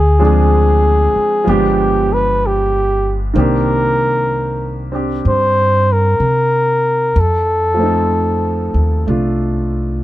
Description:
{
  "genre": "jazz ballad",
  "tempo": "63 BPM",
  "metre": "4/4",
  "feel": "swing 66% on 8ths",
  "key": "unclear",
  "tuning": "A4 = 440 Hz",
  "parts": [
    { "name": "mellow flugelhorn", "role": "melody", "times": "0.0-9.1 s", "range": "G4 to C5", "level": "-15 LUFS", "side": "equal", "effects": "none" },
    { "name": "upright bass", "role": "bass", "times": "0.0-10.0 s", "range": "G1 to C3", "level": "-16 LUFS", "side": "equal", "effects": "none" },
    { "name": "clear grand piano", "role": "accompaniment", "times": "0.2-10.0 s", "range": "Eb3 to A4", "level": "-19 LUFS", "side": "right 1 dB", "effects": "none" }
  ],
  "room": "little or no reverb",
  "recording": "close, detailed microphones",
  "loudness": "-12 LUFS",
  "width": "side -15 dB against mid",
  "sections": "0.0-10.0 A section",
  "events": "none",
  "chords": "0.0 Dm7b5; 1.5 G7b9; 3.3 Cm9; 7.2 F7",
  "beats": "0.52 1.46 2.40 | 3.35 4.29 5.25 6.20 | 7.16 8.11 9.07 10.04"
}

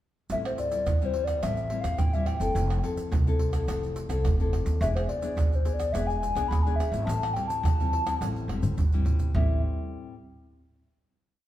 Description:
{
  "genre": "samba and choro",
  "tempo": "106 BPM",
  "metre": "4/4",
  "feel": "straight",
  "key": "A minor",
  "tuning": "A4 = 441 Hz",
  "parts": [
    { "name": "hollow clarinet-like synth lead", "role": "melody", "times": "0.3-9.6 s", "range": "C5 to B5", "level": "-30 LUFS", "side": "left 1 dB", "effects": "chorus" },
    { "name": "nylon-string guitar", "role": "accompaniment", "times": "0.3-10.1 s", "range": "A2 to A4", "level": "-34 LUFS", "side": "left 4 dB", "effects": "none" },
    { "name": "upright bass", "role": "bass", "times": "0.3-9.6 s", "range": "E1 to E2", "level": "-31 LUFS", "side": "equal", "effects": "none" },
    { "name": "maracas, surdo, pandeiro and tamborim", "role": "percussion", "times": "0.3-9.5 s", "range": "none", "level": "-27 LUFS", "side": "right 1 dB", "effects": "none" }
  ],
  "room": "wet large studio reverb, RT60 1.5 s",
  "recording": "band playing live in one room",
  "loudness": "-24 LUFS",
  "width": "side -13 dB against mid",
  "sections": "0.3-9.4 A section; 9.4-11.5 final chord",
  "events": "drum fill 8.5-9.4",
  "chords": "0.3 Am7; 2.6 Fmaj7; 4.8 E7; 7.1 Am7",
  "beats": "| 0.31 0.87 1.43 1.99 | 2.56 3.12 3.68 4.25 | 4.81 5.38 5.94 6.51 | 7.08 7.65 8.21 8.78 | 9.35 9.92"
}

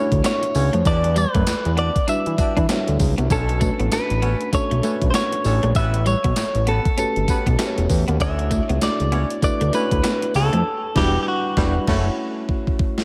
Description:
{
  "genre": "R&B, new jack swing",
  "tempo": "98 BPM",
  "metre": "4/4",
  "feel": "swing 61% on 16ths",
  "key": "B minor",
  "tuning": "A4 = 440 Hz",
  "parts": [
    { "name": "direct-recorded clean electric guitar", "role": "melody", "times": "0.0-12.8 s", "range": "F#4 to E5", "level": "-26 LUFS", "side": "equal", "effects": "delay" },
    { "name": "tine electric piano", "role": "accompaniment", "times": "0.0-13.0 s", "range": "G3 to E5", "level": "-28 LUFS", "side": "equal", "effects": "none" },
    { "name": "clean electric guitar", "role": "riff", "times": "0.0-10.6 s", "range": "G3 to D4", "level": "-31 LUFS", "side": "equal", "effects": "ensemble chorus" },
    { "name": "warm horn section", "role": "stabs", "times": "0.0-12.0 s", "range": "G3 to D5", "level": "-34 LUFS", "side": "equal", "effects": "delay" },
    { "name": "fat analog bass", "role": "bass", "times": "0.1-12.1 s", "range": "E1 to E3", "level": "-23 LUFS", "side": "equal", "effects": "none" },
    { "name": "gated 80s digital drum machine", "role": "drums", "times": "0.1-13.0 s", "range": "crash cymbal, handclaps, hi-hat, kick drum, snare drum, tambourine", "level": "-25 LUFS", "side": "equal", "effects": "gated reverb, gated reverb snare, overdrive" }
  ],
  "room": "moderate plate reverb, RT60 2.3 s",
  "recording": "dreamy mix soaked in reverb",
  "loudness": "-20 LUFS",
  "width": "mono",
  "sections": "0.0-13.0 A section",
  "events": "band accent 10.7-13.0; drum fill 12.5-13.0",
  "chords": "0.0 Dmaj9; 0.9 Em9; 3.3 Bm9; 5.8 A13; 8.2 Dmaj9; 10.7 Em9; 11.9 F#m7",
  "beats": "0.24 | 0.85 1.47 2.08 2.69 | 3.30 3.92 4.53 5.14 | 5.75 6.37 6.98 7.59 | 8.20 8.81 9.43 10.04 | 10.65 11.26 11.88 12.49"
}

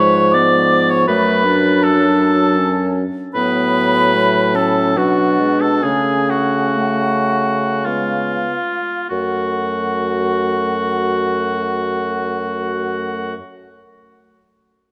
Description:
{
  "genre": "classical, slow romantic movement for wind quintet",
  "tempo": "46-82 BPM",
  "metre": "3/4",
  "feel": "rubato",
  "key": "F# minor",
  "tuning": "A4 = 441 Hz",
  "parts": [
    { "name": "mellow hollow concert flute", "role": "melody", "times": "0.0-13.4 s", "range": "E#5 to D6", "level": "-27 LUFS", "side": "equal", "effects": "none" },
    { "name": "warm oboe", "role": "second line", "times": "0.0-13.3 s", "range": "E#4 to D5", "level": "-21 LUFS", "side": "equal", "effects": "none" },
    { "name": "mellow French horn", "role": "accompaniment", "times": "0.0-13.4 s", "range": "E#3 to B3", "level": "-26 LUFS", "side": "equal", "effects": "none" },
    { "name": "warm clarinet", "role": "accompaniment", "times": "0.0-13.3 s", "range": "G#3 to F#4", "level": "-23 LUFS", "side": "equal", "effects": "none" },
    { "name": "mellow bassoon", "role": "bass", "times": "0.0-13.4 s", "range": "F#2 to C#3", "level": "-23 LUFS", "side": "equal", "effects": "none" }
  ],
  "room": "moderate concert hall reverb, RT60 2.3 s",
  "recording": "none",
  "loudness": "-17 LUFS",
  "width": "mono",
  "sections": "0.0-9.1 A section; 9.1-12.8 B section",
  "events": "slowing down 2.2-9.1",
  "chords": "0.0 C#7/G#; 1.1 F#m; 3.4 F#m/A; 5.0 Bm; 5.8 F#m/C#; 7.9 C#7; 9.1 F#m",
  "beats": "0.34 | 1.08 1.82 2.59 | 3.36 4.16 4.98 | 5.83 6.79 7.86 | 9.11 10.32 11.56"
}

